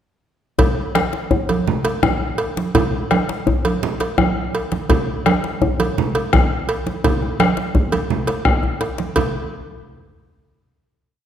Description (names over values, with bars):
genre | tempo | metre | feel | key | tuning
west african traditional, West African drum ensemble | 112 BPM (dotted quarters) | 12/8 | straight | none | none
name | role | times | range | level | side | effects
bombo | percussion | 0.6-9.3 s | none | -20 LUFS | left 1 dB | none
congas | percussion | 0.6-9.3 s | none | -22 LUFS | right 4 dB | none
cowbell | percussion | 0.6-9.3 s | none | -24 LUFS | right 2 dB | none
djembe | percussion | 0.6-9.3 s | none | -24 LUFS | left 4 dB | none
room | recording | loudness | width
wet scoring stage reverb, RT60 1.5 s | none | -17 LUFS | side -9 dB against mid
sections
0.6-9.2 A section; 9.2-11.3 final hit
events
drum fill 8.5-9.2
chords
none